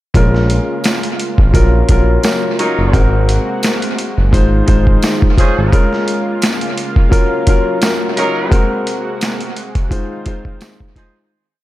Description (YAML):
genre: hip hop, boom-bap hip-hop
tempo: 86 BPM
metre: 4/4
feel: swing 55% on 16ths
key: Bb minor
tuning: A4 = 440 Hz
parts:
  - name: dark grand piano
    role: accompaniment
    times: 0.1-11.3 s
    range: Gb3 to C5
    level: -18 LUFS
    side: left 2 dB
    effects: cassette tape, high-pass filter, low-pass filter
  - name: lush unison pad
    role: sustained chords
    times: 0.1-11.3 s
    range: C3 to C5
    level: -24 LUFS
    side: right 2 dB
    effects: chorus, high-pass filter, low-pass filter
  - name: smooth synth bass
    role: bass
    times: 0.1-5.7 s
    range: Gb1 to Bb1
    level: -13 LUFS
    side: equal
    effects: none
  - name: boom bap sampler-style drum kit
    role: drums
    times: 0.1-11.1 s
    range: hi-hat, kick drum, snare drum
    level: -14 LUFS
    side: equal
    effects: dub echo
  - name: tambourine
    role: percussion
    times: 0.8-10.8 s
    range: none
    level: -32 LUFS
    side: right 8 dB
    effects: dub echo
  - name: warm horn section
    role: stabs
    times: 2.6-11.2 s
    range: F3 to Bb4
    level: -22 LUFS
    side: right 2 dB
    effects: high-pass filter, low-pass filter, dub echo
room: small room ambience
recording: echo-heavy mix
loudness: -11 LUFS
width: side -16 dB against mid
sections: 0.1-11.3 hook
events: break 5.7-11.3; fade-out 8.5-11.3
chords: 0.1 Bbm7; 1.5 Gbmaj7/Bb; 2.9 Ab9; 4.3 Fm7/Ab; 5.7 Bbm7; 7.1 Gbmaj7; 8.5 Ab9; 9.9 Fm7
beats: | 0.14 0.84 1.54 2.24 | 2.94 3.63 4.33 5.03 | 5.73 6.42 7.12 7.82 | 8.52 9.21 9.91 10.61